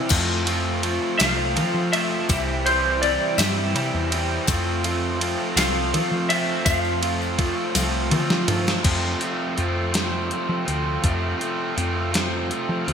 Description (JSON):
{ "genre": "indie rock", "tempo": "55 BPM (dotted quarters)", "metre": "6/8", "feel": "straight", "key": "F major", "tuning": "A4 = 440 Hz", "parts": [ { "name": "string machine, cellos", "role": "sustained chords", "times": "0.0-8.8 s", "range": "E4 to A5", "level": "-36 LUFS", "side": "equal", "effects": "none" }, { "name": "overdriven electric guitar", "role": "riff", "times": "0.0-12.9 s", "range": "F2 to F4", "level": "-28 LUFS", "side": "left 7 dB", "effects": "lush chorus" }, { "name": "overdriven electric guitar", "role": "riff", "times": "0.0-12.9 s", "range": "F2 to G4", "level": "-27 LUFS", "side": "right 7 dB", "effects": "wide subtle chorus, ping-pong delay" }, { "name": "hollow-body short-scale picked electric bass", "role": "bass", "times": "0.1-12.9 s", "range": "C2 to F3", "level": "-26 LUFS", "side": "left 1 dB", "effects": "none" }, { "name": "gated 80s digital drum machine", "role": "drums", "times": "0.1-12.9 s", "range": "crash cymbal, hi-hat, kick drum, ride cymbal, snare drum, toms", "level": "-25 LUFS", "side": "equal", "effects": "gated reverb, gated reverb snare" }, { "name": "tambourine", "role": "percussion", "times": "0.1-8.8 s", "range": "none", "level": "-32 LUFS", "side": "left 15 dB", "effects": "none" }, { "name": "electric guitar through a small old amp", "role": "melody", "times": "1.2-8.1 s", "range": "C5 to F5", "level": "-24 LUFS", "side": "left 1 dB", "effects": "analog chorus, ping-pong delay" } ], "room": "light reverb", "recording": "bright 1980s-style digital production", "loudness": "-20 LUFS", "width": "side -7 dB against mid", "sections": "0.0-8.8 A section; 8.8-12.9 B section", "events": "drum fill 7.8-8.8", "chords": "0.1 F; 2.3 C; 4.5 F", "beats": "| 0.11 1.20 | 2.29 3.38 | 4.48 5.57 | 6.66 7.75 | 8.85 9.94 | 11.04 12.14" }